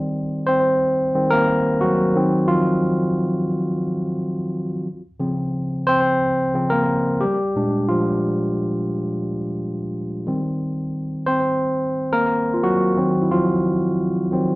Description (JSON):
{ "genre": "soul", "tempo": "89 BPM", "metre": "4/4", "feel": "straight", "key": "unclear", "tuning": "A4 = 440 Hz", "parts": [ { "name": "barky tine electric piano", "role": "solo", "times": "0.0-14.6 s", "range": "Bb2 to C5", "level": "-18 LUFS", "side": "equal", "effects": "overdrive, slapback echo" } ], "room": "light reverb", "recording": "rough home demo mix", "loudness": "-18 LUFS", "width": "side -21 dB against mid", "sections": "0.0-14.6 A section", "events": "tine electric piano solo 0.0-14.6", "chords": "0.0 Eb6; 2.2 Ebm69; 4.9 Dbmaj7; 7.2 Bb6; 10.3 Eb6; 13.0 Ebm69", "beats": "0.13 0.81 1.48 | 2.16 2.83 3.51 4.19 | 4.86 5.54 6.22 6.89 | 7.57 8.24 8.92 9.60 | 10.27 10.95 11.62 12.30 | 12.97 13.65 14.33" }